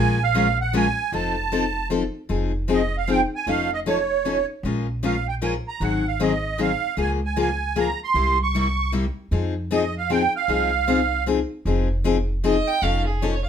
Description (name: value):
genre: acoustic string swing (jazz manouche)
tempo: 154 BPM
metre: 3/4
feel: swing 62% on 8ths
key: F minor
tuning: A4 = 441 Hz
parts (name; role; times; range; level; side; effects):
- musette accordion; melody; 0.0-11.2 s; C#5 to Db6; -23 LUFS; right 7 dB; none
- picked steel-string acoustic guitar; accompaniment; 0.0-13.3 s; C3 to Bb4; -24 LUFS; left 5 dB; none
- upright bass; bass; 0.0-13.5 s; F1 to F2; -26 LUFS; equal; none
- clear violin; second line; 12.4-13.5 s; Ab4 to G5; -24 LUFS; right 4 dB; none
room: moderate studio reverb, RT60 0.6 s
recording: minimal, uncompressed stereo recording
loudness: -20 LUFS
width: side -8 dB against mid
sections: 0.0-2.3 A section; 2.3-11.7 B section; 11.7-13.5 C section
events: violin solo 11.7-13.5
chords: 0.0 Bbm7; 1.1 F7; 2.3 Fm7; 3.5 Faug7; 4.6 Bbm7; 5.8 Ab6; 7.0 Db6; 8.2 C7b9; 9.3 Fm7; 12.8 Faug7